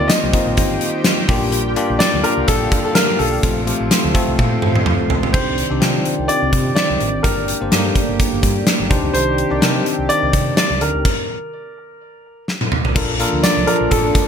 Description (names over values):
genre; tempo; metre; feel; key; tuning
1980s-style pop; 126 BPM; 4/4; swing 55% on 16ths; unclear; A4 = 439 Hz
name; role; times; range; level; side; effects
clear baby grand piano; melody; 0.0-14.3 s; A4 to Eb5; -21 LUFS; equal; ping-pong delay
bell-like tine electric piano; accompaniment; 0.0-14.3 s; A3 to D5; -22 LUFS; left 4 dB; none
overdriven semi-hollow guitar; accompaniment; 0.0-5.4, 12.9-14.3 s; F2 to Eb4; -28 LUFS; right 2 dB; none
sweeping resonant pad; sustained chords; 0.0-14.3 s; C3 to C6; -24 LUFS; right 1 dB; chorus
hollow-body short-scale fingered electric bass; bass; 0.0-14.1 s; G1 to C3; -23 LUFS; equal; none
gated 80s drum kit; drums; 0.1-14.3 s; crash cymbal, hi-hat, kick drum, snare drum, tambourine, toms; -17 LUFS; equal; gated reverb
room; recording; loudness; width
light reverb; none; -14 LUFS; side -7 dB against mid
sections
0.0-5.3 A section; 5.3-13.0 B section; 13.0-14.3 A section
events
drum fill 4.4-5.3, 12.5-13.0; stop 11.1-13.0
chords
0.0 Eb6; 1.3 Gm7/Bb; 3.4 F; 5.3 Cmadd9; 7.2 Gm; 8.9 Cmadd9; 11.1 N.C.; 13.0 Bbmaj7